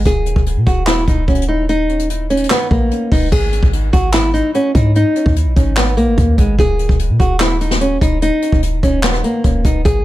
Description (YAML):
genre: hip hop, trap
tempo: 147 BPM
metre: 4/4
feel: half-time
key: G# minor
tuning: A4 = 439 Hz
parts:
  - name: clean 808-style bass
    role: bass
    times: 0.0-10.0 s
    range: D#1 to A#2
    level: -16 LUFS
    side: equal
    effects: none
  - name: nylon-string guitar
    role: melody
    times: 0.1-10.0 s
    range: G#3 to G#4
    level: -16 LUFS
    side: equal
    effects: low-pass filter, tape echo
  - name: jazz brush drum kit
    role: drums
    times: 0.1-9.9 s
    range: crash cymbal, handclaps, hi-hat, kick drum, rim click, snare drum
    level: -16 LUFS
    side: equal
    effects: none
room: small room ambience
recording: echo-heavy mix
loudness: -12 LUFS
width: side -15 dB against mid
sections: 0.0-3.3 A section; 3.3-10.0 B section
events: none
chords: 0.1 D#5; 3.3 G#5; 6.6 D#5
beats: | 0.06 0.46 0.87 1.28 | 1.69 2.10 2.50 2.91 | 3.32 3.73 4.14 4.54 | 4.95 5.36 5.77 6.18 | 6.59 6.99 7.40 7.81 | 8.22 8.63 9.04 9.44 | 9.85